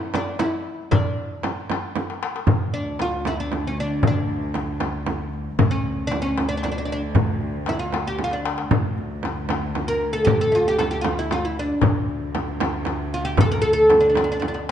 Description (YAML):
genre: Arabic maqam ensemble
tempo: 116 BPM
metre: 3/4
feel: straight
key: D maqam suznak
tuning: A4 = 436 Hz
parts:
  - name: oud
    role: melody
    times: 0.0-14.7 s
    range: C#4 to Bb4+20c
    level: -22 LUFS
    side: equal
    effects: none
  - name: darbuka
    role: percussion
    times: 0.1-14.7 s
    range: none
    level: -25 LUFS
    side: left 5 dB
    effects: none
  - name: frame drum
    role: percussion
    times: 0.1-14.5 s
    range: none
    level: -26 LUFS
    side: right 5 dB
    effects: none
  - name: warm studio cello section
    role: drone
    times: 2.5-14.7 s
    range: D2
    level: -29 LUFS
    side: equal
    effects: none
room: moderate recital hall reverb, RT60 1.6 s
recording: dark, warm production, nothing above 10.3 kHz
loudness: -20 LUFS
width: side -9 dB against mid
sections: 0.0-2.5 A section; 2.5-14.7 B section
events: drum fill 2.0-2.5, 8.2-8.7, 14.4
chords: none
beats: 0.40 | 0.92 1.44 1.96 | 2.48 3.00 3.52 | 4.04 4.56 5.08 | 5.59 6.11 6.63 | 7.15 7.67 8.19 | 8.71 9.23 9.75 | 10.27 10.79 11.30 | 11.82 12.34 12.86 | 13.38 13.90 14.42